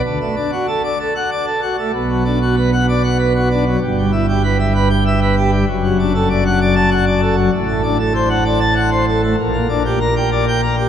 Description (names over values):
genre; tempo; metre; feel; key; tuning
classical, organ toccata; 97 BPM; 3/4; straight; D major, G minor from 7.5 s; A4 = 440 Hz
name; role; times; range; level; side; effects
pipe organ, plenum; solo; 0.0-10.9 s; F#1 to A5; -14 LUFS; equal; none
room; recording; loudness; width
wet cathedral reverb, RT60 5.0 s; none; -14 LUFS; side -9 dB against mid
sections
0.1-10.9 A section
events
none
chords
0.1 D; 1.9 Bm; 3.8 Em/G; 5.7 D/F#; 7.5 D7/A; 9.4 Gm/Bb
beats
| 0.06 0.69 1.32 | 1.94 2.56 3.19 | 3.81 4.43 5.05 | 5.67 6.29 6.91 | 7.53 8.15 8.76 | 9.38 10.00 10.62